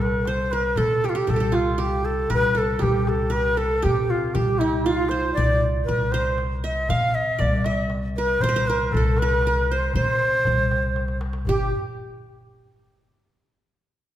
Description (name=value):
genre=Arabic maqam ensemble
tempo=118 BPM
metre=3/4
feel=straight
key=C maqam rast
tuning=A4 = 440 Hz
part: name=breathy bright ney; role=melody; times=0.0-11.7 s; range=E4-50c to F5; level=-23 LUFS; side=equal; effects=none
part: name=qanun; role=second line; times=0.0-11.7 s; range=E4-50c to F5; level=-28 LUFS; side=right 4 dB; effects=none
part: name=upright bass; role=bass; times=0.0-11.7 s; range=G1 to C3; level=-26 LUFS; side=left 1 dB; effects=none
part: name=darbuka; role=percussion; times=0.3-11.7 s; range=none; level=-28 LUFS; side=left 1 dB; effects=none
room=wet concert hall reverb, RT60 1.8 s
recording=recorded in a church or concert hall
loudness=-20 LUFS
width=side -12 dB against mid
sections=0.0-11.5 A section; 11.5-13.0 B section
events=drum fill 11.0-11.5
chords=none